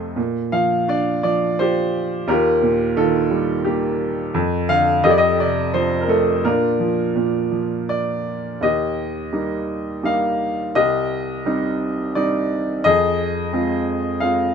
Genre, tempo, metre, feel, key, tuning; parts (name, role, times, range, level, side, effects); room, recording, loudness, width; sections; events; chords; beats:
classical, lyrical solo piano; 85 BPM; 3/4; rubato; Bb major, Eb major from 8.6 s; A4 = 441 Hz
clear upright piano; solo; 0.0-14.5 s; C2 to F5; -17 LUFS; equal
little or no reverb; close, detailed microphones; -17 LUFS; side -6 dB against mid
0.0-8.6 A section; 8.6-14.5 B section
0.2 Bb6; 2.3 Ebadd9; 4.3 Dm/F; 5.0 Fadd9; 6.4 Bb; 8.6 Eb; 10.8 Cm; 12.8 Fm
| 0.17 0.89 1.60 | 2.29 2.97 3.65 | 4.35 5.04 5.74 | 6.45 7.16 7.89 | 8.62 9.33 10.04 | 10.75 11.46 12.16 | 12.84 13.52 14.21